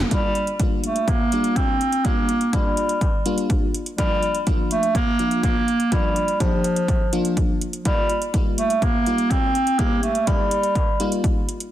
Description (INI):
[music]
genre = synth-pop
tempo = 124 BPM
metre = 4/4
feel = straight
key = G minor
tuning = A4 = 445 Hz
[part]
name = warm clarinet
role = melody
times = 0.1-11.2 s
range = F3 to C4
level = -22 LUFS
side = right 1 dB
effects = tape echo
[part]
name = FM electric piano with soft pad layer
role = accompaniment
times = 0.1-11.4 s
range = F3 to G4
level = -27 LUFS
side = left 3 dB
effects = chorus
[part]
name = 80s electronic pad drums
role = drums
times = 0.1-11.7 s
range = hi-hat, kick drum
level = -22 LUFS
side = equal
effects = none
[sound]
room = moderate recital hall reverb, RT60 1.4 s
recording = dense, heavily limited modern master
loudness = -18 LUFS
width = side -12 dB against mid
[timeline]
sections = 0.1-11.7 A section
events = none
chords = 0.1 Gm7; 4.0 Bb; 7.9 Ebadd9